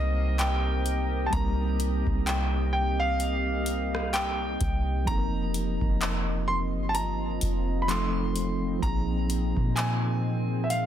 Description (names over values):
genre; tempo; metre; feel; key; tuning
contemporary R&B; 64 BPM; 4/4; swing 58% on 16ths; C minor; A4 = 440 Hz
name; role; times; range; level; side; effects
warm grand piano; melody; 0.0-10.9 s; Eb5 to C6; -32 LUFS; right 1 dB; digital delay
mellow tine electric piano; accompaniment; 0.0-10.9 s; F3 to Bb4; -32 LUFS; left 1 dB; medium stereo tremolo
deep dark ambient pad; sustained chords; 0.0-10.9 s; C4 to Eb5; -35 LUFS; right 1 dB; chorus, built-in reverb
soft 808-style bass; bass; 0.0-10.9 s; F1 to Bb2; -29 LUFS; equal; none
booming analog drum machine; drums; 0.4-10.9 s; handclaps, hi-hat, kick drum, rim click; -30 LUFS; equal; none
room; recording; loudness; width
little or no reverb; dense, heavily limited modern master; -25 LUFS; side -10 dB against mid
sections
0.0-10.9 A section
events
none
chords
0.0 Cm7; 5.1 F7sus4; 7.9 F7; 8.8 Bb9sus4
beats
0.39 | 1.32 2.26 3.20 4.14 | 5.08 6.01 6.95 7.89 | 8.82 9.76 10.70